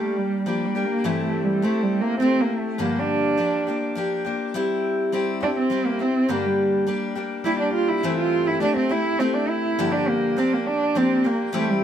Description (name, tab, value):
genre	acoustic folk duo or small band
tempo	103 BPM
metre	3/4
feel	straight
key	unclear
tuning	A4 = 440 Hz
part	dark cello	second line	0.0-11.8 s	F3 to F4	-22 LUFS	right 3 dB	none
part	picked steel-string acoustic guitar	accompaniment	0.0-11.8 s	G2 to G4	-24 LUFS	left 3 dB	none
room	wet small room reverb, RT60 0.5 s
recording	none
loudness	-20 LUFS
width	side -9 dB against mid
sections	0.0-11.8 A section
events	cello solo 0.0-11.8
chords	0.0 Gm; 1.1 Am/G; 2.8 Bb/G; 4.5 C/G; 6.3 Gm; 8.0 Am/G; 9.8 Bb/G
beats	0.47 | 1.05 1.63 2.22 | 2.80 3.38 3.96 | 4.55 5.13 5.71 | 6.29 6.88 7.46 | 8.04 8.62 9.21 | 9.79 10.37 10.95 | 11.53